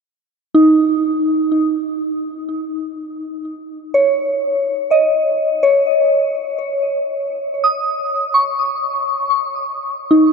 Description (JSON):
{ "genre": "ambient", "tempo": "63 BPM", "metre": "4/4", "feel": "straight", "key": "unclear", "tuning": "A4 = 442 Hz", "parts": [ { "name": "soft synth bell", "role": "solo", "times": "0.5-10.3 s", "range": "D#4 to D#6", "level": "-15 LUFS", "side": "equal", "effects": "chorus, ping-pong delay" } ], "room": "wet huge ambient reverb, RT60 9.5 s", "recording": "dreamy mix soaked in reverb", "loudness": "-15 LUFS", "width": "side -5 dB against mid", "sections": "0.4-10.3 A section", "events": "none", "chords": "0.4 C#sus2/D#" }